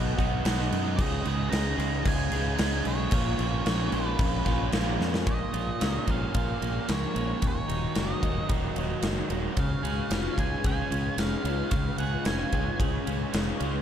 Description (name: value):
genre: rock, shoegaze and dream pop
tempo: 112 BPM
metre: 4/4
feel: straight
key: unclear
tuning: A4 = 440 Hz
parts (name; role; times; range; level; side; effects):
- glassy FM pad; sustained chords; 0.0-13.8 s; Gb4 to D#6; -40 LUFS; left 3 dB; ensemble chorus, built-in reverb
- crunchy overdriven guitar; riff; 0.0-13.8 s; Eb2 to Ab4; -33 LUFS; right 11 dB; reverse reverb
- raw garage guitar; riff; 0.0-13.8 s; Eb2 to Ab4; -34 LUFS; left 11 dB; overdrive, ensemble chorus
- growling fingered electric bass; bass; 0.0-13.8 s; Eb1 to F#2; -31 LUFS; equal; overdrive
- huge arena drum kit; drums; 0.2-13.7 s; crash cymbal, kick drum, ride cymbal, snare drum; -30 LUFS; equal; none
- octave-fuzz lead guitar; melody; 1.0-12.8 s; Db5 to Bb5; -36 LUFS; right 2 dB; distortion, analog delay
room: small room ambience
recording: dark, warm production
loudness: -25 LUFS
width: side -9 dB against mid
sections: 0.0-5.3 A section; 5.3-13.8 B section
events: drum fill 5.0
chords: 0.0 B; 1.0 Db13; 3.1 Bbm7; 7.4 Ebm9; 9.6 Db7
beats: 0.44 | 0.98 1.51 2.05 2.58 | 3.12 3.66 4.19 4.73 | 5.27 5.80 6.34 6.88 | 7.42 7.95 8.49 9.03 | 9.57 10.10 10.64 11.18 | 11.72 12.26 12.79 13.33